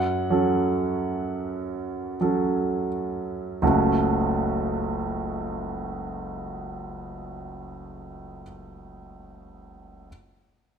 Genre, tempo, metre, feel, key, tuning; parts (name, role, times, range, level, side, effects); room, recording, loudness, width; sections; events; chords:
classical, romantic nocturne for solo piano; 28-34 BPM (dotted quarters); 6/8; rubato; F# minor; A4 = 440 Hz
clear grand piano; solo; 0.0-10.1 s; F#1 to F#5; -25 LUFS; right 2 dB
wet recital hall reverb, RT60 1.6 s; minimal, uncompressed stereo recording; -24 LUFS; side -7 dB against mid
0.0-3.6 A section; 3.6-7.8 B section
slowing down 0.0-3.6
0.0 F#m